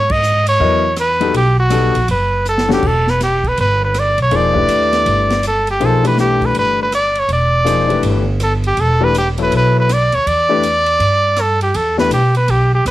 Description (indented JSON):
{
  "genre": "modal jazz",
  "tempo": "162 BPM",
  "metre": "4/4",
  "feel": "swing 63% on 8ths",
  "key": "E dorian",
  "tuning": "A4 = 439 Hz",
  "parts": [
    { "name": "brilliant trumpet", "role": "melody", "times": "0.0-12.9 s", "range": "F#4 to Eb5", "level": "-15 LUFS", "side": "right 1 dB", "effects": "cassette tape" },
    { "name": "upright bass", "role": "bass", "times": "0.0-12.9 s", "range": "E1 to B2", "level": "-17 LUFS", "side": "right 1 dB", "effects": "none" },
    { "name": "swinging big-band drum kit", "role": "drums", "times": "0.1-12.9 s", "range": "crash cymbal, hi-hat, kick drum, ride cymbal, rim click, snare drum", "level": "-26 LUFS", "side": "right 1 dB", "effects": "cassette tape" },
    { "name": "clear grand piano", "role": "accompaniment", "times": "0.6-12.1 s", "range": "D3 to Eb5", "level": "-18 LUFS", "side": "left 7 dB", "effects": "cassette tape" }
  ],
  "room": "light reverb",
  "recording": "home recording on cassette",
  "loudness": "-12 LUFS",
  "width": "side -15 dB against mid",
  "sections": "0.0-2.8 A section; 2.8-12.9 B section",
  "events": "band accent 0.0; drum fill 2.5-2.8",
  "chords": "0.0 Dbm9; 1.3 B7b13; 2.8 Em7",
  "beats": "0.23 0.60 0.97 | 1.34 1.72 2.09 2.46 | 2.83 3.20 3.57 3.94 | 4.31 4.69 5.06 5.43 | 5.80 6.17 6.54 6.91 | 7.29 7.66 8.03 8.40 | 8.77 9.14 9.51 9.88 | 10.26 10.63 11.00 11.37 | 11.74 12.11 12.48 12.85"
}